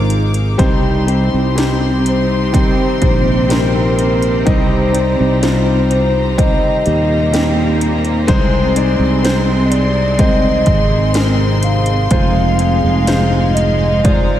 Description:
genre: pop ballad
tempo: 62 BPM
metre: 4/4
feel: straight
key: C minor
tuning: A4 = 438 Hz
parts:
  - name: hollow clarinet-like synth lead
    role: melody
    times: 0.0-14.4 s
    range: Bb4 to F5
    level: -20 LUFS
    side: equal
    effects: chorus
  - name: warm concert grand piano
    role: accompaniment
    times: 0.0-14.4 s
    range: C3 to Eb5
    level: -20 LUFS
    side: left 4 dB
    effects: none
  - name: rich studio string section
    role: sustained chords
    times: 0.0-14.4 s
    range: Eb4 to D6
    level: -24 LUFS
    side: left 2 dB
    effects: none
  - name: fingerpicked steel-string acoustic guitar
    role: arpeggios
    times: 0.0-14.4 s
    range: F2 to Ab4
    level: -24 LUFS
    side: right 5 dB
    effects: none
  - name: fretless electric bass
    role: bass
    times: 0.0-14.3 s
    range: F1 to Eb2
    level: -16 LUFS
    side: equal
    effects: analog chorus
  - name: house drum kit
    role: drums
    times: 0.1-14.3 s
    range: hi-hat, kick drum, snare drum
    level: -18 LUFS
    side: equal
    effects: overdrive
  - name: bright studio cello section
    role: second line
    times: 0.6-14.4 s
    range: Ab2 to C4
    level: -22 LUFS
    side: right 2 dB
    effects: none
room: moderate lush hall reverb, RT60 2.3 s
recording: dreamy mix soaked in reverb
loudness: -11 LUFS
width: side -11 dB against mid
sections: 0.0-14.4 A section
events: none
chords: 0.0 Fm7; 0.6 Cm; 8.3 Ab/C; 12.1 Fm7

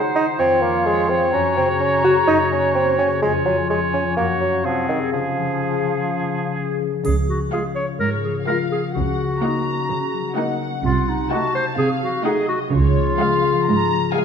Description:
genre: cinematic, playful, whimsical film cue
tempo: 127 BPM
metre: 4/4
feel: straight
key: Db major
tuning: A4 = 441 Hz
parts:
  - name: clear oboe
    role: second line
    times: 0.0-6.8 s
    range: Ab4 to Db5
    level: -26 LUFS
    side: right 2 dB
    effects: none
  - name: flute section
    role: second line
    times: 0.0-6.8 s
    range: F5 to Bb5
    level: -27 LUFS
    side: left 4 dB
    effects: none
  - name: warm clarinet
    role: second line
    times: 0.0-14.2 s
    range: C4 to Db5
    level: -24 LUFS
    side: equal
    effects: none
  - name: concert harp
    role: arpeggios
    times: 0.0-14.2 s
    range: F2 to Db5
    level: -25 LUFS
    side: left 8 dB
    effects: none
  - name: mellow bassoon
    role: accompaniment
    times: 0.2-6.5 s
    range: Eb3 to Gb4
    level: -19 LUFS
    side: right 2 dB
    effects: none
  - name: muted studio cello section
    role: bass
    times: 7.0-14.0 s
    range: Ab2 to Db3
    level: -24 LUFS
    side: right 4 dB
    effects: none
  - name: triangle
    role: percussion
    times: 7.0-8.0 s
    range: none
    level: -42 LUFS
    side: equal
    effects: none
  - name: muted studio double bass section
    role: bass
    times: 7.1-13.1 s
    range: C2 to Db2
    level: -22 LUFS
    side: right 4 dB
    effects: none
  - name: muted studio violin section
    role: melody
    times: 7.5-14.2 s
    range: F5 to Gb5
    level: -31 LUFS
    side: left 3 dB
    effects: none
  - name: muted studio viola section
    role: accompaniment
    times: 7.5-14.2 s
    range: Ab3 to Ab4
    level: -27 LUFS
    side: right 1 dB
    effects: none
  - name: muted studio violin section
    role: second line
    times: 8.0-14.2 s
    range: Db5 to Bb5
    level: -28 LUFS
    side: left 1 dB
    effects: none
room: wet scoring stage reverb, RT60 1.6 s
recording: dark, warm production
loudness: -17 LUFS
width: side -7 dB against mid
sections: 0.0-7.0 A section; 7.0-14.2 A section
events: none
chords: 0.4 Db/F; 1.3 Gb; 3.2 Db/F; 4.2 Gb; 4.6 Ab7/C; 5.1 Db; 8.9 Ebm7/Db; 10.8 Cdim7; 12.7 Db

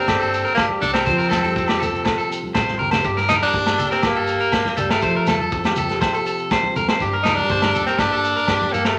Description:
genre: highlife guitar band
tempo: 122 BPM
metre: 4/4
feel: straight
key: G minor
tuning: A4 = 440 Hz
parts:
  - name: raspy tenor saxophone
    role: melody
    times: 0.0-9.0 s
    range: G3 to Eb4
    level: -24 LUFS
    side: equal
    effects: none
  - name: nylon-string guitar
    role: accompaniment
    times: 0.0-9.0 s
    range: G2 to A4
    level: -29 LUFS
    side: equal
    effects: none
  - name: electric guitar at the edge of break-up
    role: arpeggios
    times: 0.0-9.0 s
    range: G4 to C5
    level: -25 LUFS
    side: equal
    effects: none
  - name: fingered electric bass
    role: bass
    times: 0.1-9.0 s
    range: F1 to G2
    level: -34 LUFS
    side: equal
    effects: none
  - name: vintage drum kit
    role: drums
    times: 0.1-9.0 s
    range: kick drum, snare drum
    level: -27 LUFS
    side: equal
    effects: none
  - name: agogo bells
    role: percussion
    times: 0.1-9.0 s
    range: none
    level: -28 LUFS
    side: equal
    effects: none
  - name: shekere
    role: percussion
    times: 0.1-8.9 s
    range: none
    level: -38 LUFS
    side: equal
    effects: none
  - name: congas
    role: percussion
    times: 0.7-8.8 s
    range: none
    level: -33 LUFS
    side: equal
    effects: none
room: moderate large studio reverb, RT60 1.0 s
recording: none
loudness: -19 LUFS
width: mono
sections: 0.0-9.0 A section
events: drum fill 2.4-3.0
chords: 0.0 Gmadd9; 1.1 F; 3.0 Gmadd9; 5.0 F; 7.0 Gmadd9

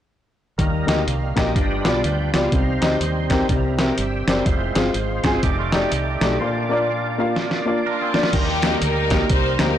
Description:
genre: uptempo gospel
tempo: 124 BPM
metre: 4/4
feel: swing 61% on 8ths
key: Eb major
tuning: A4 = 440 Hz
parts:
  - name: warm upright piano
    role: accompaniment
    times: 0.6-9.7 s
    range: G2 to Ab5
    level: -22 LUFS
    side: left 2 dB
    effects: none
  - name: overdriven tonewheel organ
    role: sustained chords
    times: 0.6-9.8 s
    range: G3 to B5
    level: -26 LUFS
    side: right 3 dB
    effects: slow rotary speaker, chorus vibrato
  - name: fingered electric bass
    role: bass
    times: 0.6-9.8 s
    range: F1 to Eb2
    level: -24 LUFS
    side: right 1 dB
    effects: none
  - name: lo-fi sampler-style drum kit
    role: drums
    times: 0.6-9.7 s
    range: crash cymbal, hi-hat, kick drum, snare drum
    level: -22 LUFS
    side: right 1 dB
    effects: none
  - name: twangy electric guitar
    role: second line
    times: 5.2-8.5 s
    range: G3 to C5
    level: -31 LUFS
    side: right 9 dB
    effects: tape echo
  - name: rich studio string section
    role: melody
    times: 7.9-9.8 s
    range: Bb3 to C5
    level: -23 LUFS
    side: left 2 dB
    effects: none
room: light reverb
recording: blown-out, overdriven recording, overdrive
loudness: -18 LUFS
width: side -10 dB against mid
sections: 0.6-8.3 A section; 8.3-9.8 B section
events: drum fill 7.4-8.3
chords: 0.6 Eb; 1.6 G7; 2.5 Cm; 3.5 C7; 4.5 Fm; 5.4 F13; 6.4 Bb; 8.3 Eb

